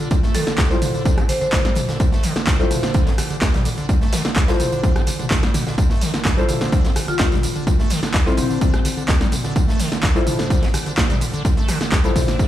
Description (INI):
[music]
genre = acid house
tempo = 127 BPM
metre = 4/4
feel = straight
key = D minor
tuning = A4 = 440 Hz
[part]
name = acid bass, square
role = riff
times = 0.0-12.5 s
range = D2 to D4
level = -24 LUFS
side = equal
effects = tube saturation, wide subtle chorus, tape echo
[part]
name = deep mellow chord stab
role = stabs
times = 0.0-12.5 s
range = E4 to C5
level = -26 LUFS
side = left 2 dB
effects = chorus, tape echo
[part]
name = punchy analog drum machine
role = drums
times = 0.0-12.5 s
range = handclaps, hi-hat, rim click, snare drum, tambourine, toms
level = -23 LUFS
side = equal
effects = overdrive
[part]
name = big rock drum kit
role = drums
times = 0.1-12.5 s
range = hi-hat, snare drum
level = -34 LUFS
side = right 2 dB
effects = none
[part]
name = electronic kick drum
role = drums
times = 0.1-12.5 s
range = none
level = -19 LUFS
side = equal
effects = overdrive
[part]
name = marimba with medium hard mallets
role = melody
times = 0.3-1.5, 7.1-8.5 s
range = C4 to C5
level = -26 LUFS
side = left 3 dB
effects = tape echo
[sound]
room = light reverb, digital ambience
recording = played on a big sound system in a bare room, large studio reverb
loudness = -16 LUFS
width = side -12 dB against mid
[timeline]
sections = 0.0-12.5 A section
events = none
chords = 0.0 Dm7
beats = | 0.11 0.58 1.05 1.53 | 2.00 2.47 2.94 3.42 | 3.89 4.36 4.83 5.31 | 5.78 6.25 6.72 7.20 | 7.67 8.14 8.61 9.09 | 9.56 10.03 10.50 10.97 | 11.45 11.92 12.39